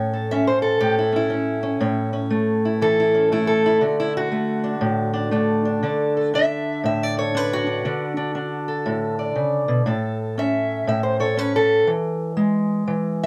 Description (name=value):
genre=acoustic country blues, solo or duo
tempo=119 BPM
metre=4/4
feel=swing 64% on 8ths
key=A major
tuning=A4 = 441 Hz
part: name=fingerpicked steel-string acoustic guitar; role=solo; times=0.0-13.3 s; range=A2 to E5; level=-21 LUFS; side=equal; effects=none
room=light reverb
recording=close, detailed microphones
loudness=-21 LUFS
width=mono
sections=0.0-13.3 A section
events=none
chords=0.0 A; 3.8 D; 9.9 A; 11.9 E